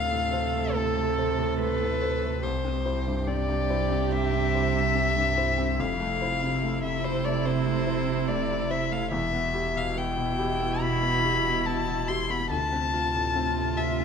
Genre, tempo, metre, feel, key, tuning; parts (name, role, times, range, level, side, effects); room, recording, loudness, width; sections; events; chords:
neoclassical piano and strings; 71 BPM; 4/4; rubato; D dorian; A4 = 441 Hz
warm violin; melody; 0.0-14.0 s; A4 to C6; -28 LUFS; left 5 dB
warm cello; second line; 0.0-14.0 s; B2 to C3; -31 LUFS; right 8 dB
felt-muted upright piano; accompaniment; 0.0-14.0 s; C2 to C5; -31 LUFS; left 3 dB
warm viola; accompaniment; 0.0-14.0 s; E4 to A4; -33 LUFS; right 8 dB
saturated sub bass; bass; 0.0-14.0 s; E1 to D2; -32 LUFS; equal
moderate concert hall reverb, RT60 2.3 s; minimal, uncompressed stereo recording; -24 LUFS; side -6 dB against mid
0.0-14.0 A section
0.0 Dm7; 2.4 C; 5.8 Fmaj7; 9.1 Em; 12.5 Dm7